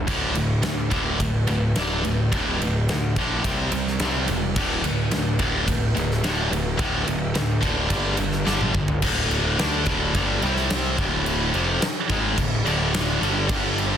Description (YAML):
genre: hard rock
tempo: 107 BPM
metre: 4/4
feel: straight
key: unclear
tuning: A4 = 439 Hz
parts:
  - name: high-gain distorted guitar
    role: riff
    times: 0.0-14.0 s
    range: D2 to D4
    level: -23 LUFS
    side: equal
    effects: distortion
  - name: fuzz picked electric bass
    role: bass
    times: 0.0-14.0 s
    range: D1 to D2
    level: -27 LUFS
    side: equal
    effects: overdrive
  - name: huge arena drum kit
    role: drums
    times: 0.1-13.9 s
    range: crash cymbal, kick drum, ride cymbal, snare drum, splash cymbal, toms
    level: -26 LUFS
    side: equal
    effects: none
room: light reverb, small room ambience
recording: dense, heavily limited modern master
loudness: -20 LUFS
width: side -9 dB against mid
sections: 0.0-9.0 A section; 9.0-14.0 B section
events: drum fill 8.5-9.0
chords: 0.1 D5; 3.4 C5; 4.6 D5; 7.9 G5; 9.0 D5; 10.4 C5; 11.0 Dm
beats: | 0.09 0.65 1.20 1.76 | 2.32 2.88 3.44 4.00 | 4.56 5.12 5.68 6.24 | 6.79 7.35 7.91 8.47 | 9.03 9.59 10.15 10.70 | 11.26 11.82 12.38 12.94 | 13.50